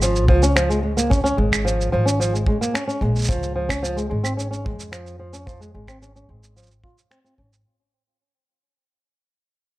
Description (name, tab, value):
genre	folktronica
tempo	110 BPM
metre	4/4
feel	straight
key	unclear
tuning	A4 = 443 Hz
part	flamenco guitar	arpeggios	0.0-7.5 s	F3 to F4	-22 LUFS	equal	low-pass filter, ping-pong delay
part	upright bass	bass	0.0-7.6 s	Ab1 to F2	-23 LUFS	equal	none
part	electronic shaker, finger snaps and claves	drums	0.0-7.6 s	none	-25 LUFS	right 2 dB	none
part	kick drum	drums	0.3-7.5 s	none	-22 LUFS	equal	none
room	small room ambience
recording	none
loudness	-18 LUFS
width	side -17 dB against mid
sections	0.0-7.6 A section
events	fade-out 0.0-7.6; filter sweep on nylon-string guitar 0.0-7.6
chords	0.0 Bbm7; 3.3 Db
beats	0.01 0.56 | 1.10 1.65 2.19 2.74 | 3.28 3.83 4.37 4.92 | 5.46 6.01 6.55 7.10